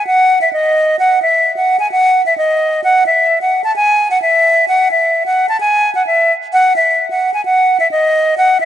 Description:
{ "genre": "hip hop", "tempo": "130 BPM", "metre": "4/4", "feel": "half-time", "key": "unclear", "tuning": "A4 = 441 Hz", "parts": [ { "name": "breathy silver concert flute", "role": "solo", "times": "0.0-8.7 s", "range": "D#5 to A5", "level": "-10 LUFS", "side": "equal", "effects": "tape echo" } ], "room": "light reverb", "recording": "nothing above 10.5 kHz", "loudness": "-10 LUFS", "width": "side -10 dB against mid", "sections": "0.0-8.7 A section", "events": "none", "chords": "none", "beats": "0.07 0.53 | 0.99 1.45 1.91 2.38 | 2.84 3.30 3.76 4.22 | 4.68 5.14 5.61 6.07 | 6.53 6.99 7.45 7.91 | 8.38" }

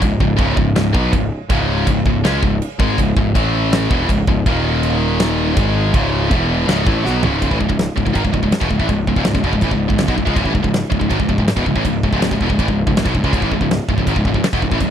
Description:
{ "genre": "heavy metal", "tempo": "162 BPM", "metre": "4/4", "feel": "straight", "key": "C# minor", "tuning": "A4 = 439 Hz", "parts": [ { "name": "high-gain distorted guitar", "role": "riff", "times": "0.0-14.9 s", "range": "C#2 to C#4", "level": "-18 LUFS", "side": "equal", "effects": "distortion" }, { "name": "fuzz picked electric bass", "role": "bass", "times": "0.0-14.9 s", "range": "C#1 to C#2", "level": "-19 LUFS", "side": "equal", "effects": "overdrive" }, { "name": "big rock drum kit", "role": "drums", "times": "0.0-14.9 s", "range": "crash cymbal, kick drum, snare drum, toms", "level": "-19 LUFS", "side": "equal", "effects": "none" } ], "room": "little or no reverb", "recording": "dry, close 1970s-style studio recording", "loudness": "-14 LUFS", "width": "side -9 dB against mid", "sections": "0.0-7.4 A section; 7.4-14.9 B section", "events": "half time 0.0-7.4; drum fill 7.1-7.4", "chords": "0.0 C#5; 3.4 A5; 3.9 C#m; 4.5 D#5; 5.6 G#5; 5.9 C#5; 6.3 E5; 6.7 C#m", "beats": "| 0.03 0.40 0.76 1.13 | 1.50 1.87 2.24 2.61 | 2.98 3.35 3.72 4.09 | 4.46 4.83 5.20 5.57 | 5.94 6.31 6.68 7.05 | 7.42 7.79 8.16 8.54 | 8.90 9.28 9.64 10.01 | 10.38 10.75 11.12 11.49 | 11.86 12.23 12.60 12.97 | 13.34 13.71 14.07 14.44 | 14.81" }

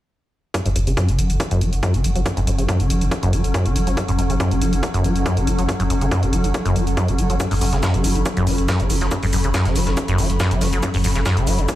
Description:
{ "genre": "driving peak-time techno", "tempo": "140 BPM", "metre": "4/4", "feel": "straight", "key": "F# minor", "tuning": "A4 = 436 Hz", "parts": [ { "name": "acid bass, saw", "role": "riff", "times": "0.5-11.6 s", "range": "F#2 to F#3", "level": "-21 LUFS", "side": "equal", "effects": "wide subtle chorus, sidechain pumping, ping-pong delay" }, { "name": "swarming drone", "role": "drone", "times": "1.3-11.8 s", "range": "F#3 to C#4", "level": "-26 LUFS", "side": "left 1 dB", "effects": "built-in reverb, sidechain pumping" }, { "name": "electronic hi-hat", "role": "drums", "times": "0.5-11.8 s", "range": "none", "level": "-30 LUFS", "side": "equal", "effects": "overdrive, sidechain pumping on hats, small room ambience" }, { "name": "electronic kick drum", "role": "drums", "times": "0.5-11.8 s", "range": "none", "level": "-25 LUFS", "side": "equal", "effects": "overdrive, high-pass filter on kick, small room ambience" }, { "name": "airy breathy pad", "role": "texture", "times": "0.5-11.8 s", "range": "C#4 to B5", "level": "-30 LUFS", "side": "equal", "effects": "chorus, sidechain pumping" }, { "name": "saturated sub bass", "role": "bass", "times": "0.7-11.7 s", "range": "F#1", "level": "-22 LUFS", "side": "equal", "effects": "overdrive, sidechain pumping, low-pass filter" }, { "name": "breakbeat sampler-style drum kit", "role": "drums", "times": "7.4-11.8 s", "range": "hi-hat, shaker, snare drum", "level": "-31 LUFS", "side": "right 1 dB", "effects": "sidechain pumping on perc, high-pass filter on perc, small room ambience, high-pass filter on snare, sidechain pumping on hats, high-pass filter on hats" } ], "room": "little or no reverb", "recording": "played on a big sound system in a bare room, large studio reverb", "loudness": "-17 LUFS", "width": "side -14 dB against mid", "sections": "0.5-11.8 A section", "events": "fade-in on analog synth pad 0.5-11.8; filter sweep on acid bass 0.5-11.8", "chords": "0.5 F#m", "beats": "| 0.54 0.97 1.40 1.83 | 2.26 2.69 3.12 3.54 | 3.97 4.40 4.83 5.26 | 5.69 6.12 6.54 6.97 | 7.40 7.83 8.26 8.69 | 9.12 9.54 9.97 10.40 | 10.83 11.26 11.69" }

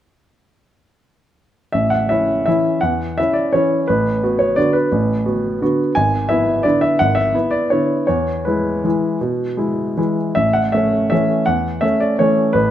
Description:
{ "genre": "classical, piano waltz", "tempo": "149-186 BPM", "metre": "3/4", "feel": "rubato", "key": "A major", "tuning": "A4 = 439 Hz", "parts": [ { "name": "warm upright piano", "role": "solo", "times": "1.7-12.7 s", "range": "G#1 to G#5", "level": "-15 LUFS", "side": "equal", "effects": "none" } ], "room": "moderate recital hall reverb, RT60 1.6 s", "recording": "close, detailed microphones", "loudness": "-15 LUFS", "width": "side -11 dB against mid", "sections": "1.7-12.7 A section", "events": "none", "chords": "1.7 A; 3.9 Bm7/A; 5.9 E7/G#; 8.1 E; 10.4 A", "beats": "| 1.74 2.10 2.47 | 2.82 3.18 3.53 | 3.88 4.22 4.57 | 4.91 5.25 5.61 | 5.95 6.28 6.64 | 7.00 7.34 7.71 | 8.08 8.47 8.85 | 9.21 9.58 9.97 | 10.37 10.75 11.11 | 11.47 11.83 12.20 | 12.55" }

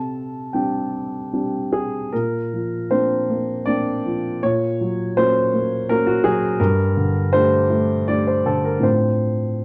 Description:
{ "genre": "neoclassical minimalist piano", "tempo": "81 BPM", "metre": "3/4", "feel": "uneven beats, rubato", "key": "Bb major", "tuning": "A4 = 438 Hz", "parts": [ { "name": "dark grand piano", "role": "solo", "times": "0.0-9.6 s", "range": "G2 to A5", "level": "-20 LUFS", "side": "equal", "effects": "none" } ], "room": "moderate small room reverb, RT60 0.5 s", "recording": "dark, warm production", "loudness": "-20 LUFS", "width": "mono", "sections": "0.0-2.1 A section; 2.1-9.6 B section", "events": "none", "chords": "0.0 Csus2; 2.1 Bbadd9; 4.4 Gb/Bb; 6.6 Gmadd9; 8.8 F6/A", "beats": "0.54 1.34 | 2.14 2.92 3.67 | 4.43 5.17 5.89 | 6.61 7.33 8.07 | 8.84 9.62" }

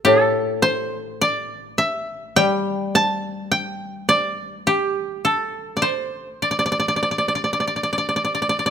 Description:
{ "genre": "japanese traditional, Japanese chamber music", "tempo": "46-53 BPM", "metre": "4/4", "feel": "rubato", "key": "D suspended pentatonic", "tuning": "A4 = 441 Hz", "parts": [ { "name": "koto", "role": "melody", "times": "0.0-8.7 s", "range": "G4 to A5", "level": "-20 LUFS", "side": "equal", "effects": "none" }, { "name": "koto", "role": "accompaniment", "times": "0.1-5.7 s", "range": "A2 to G3", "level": "-21 LUFS", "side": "left 2 dB", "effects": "none" } ], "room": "light reverb", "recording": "close, detailed microphones, faint mains hum", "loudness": "-19 LUFS", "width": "side -8 dB against mid", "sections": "0.0-8.7 A section", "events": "none", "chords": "none", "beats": "| 0.06 1.21 2.36 3.51 | 4.66 5.84 7.05 8.32" }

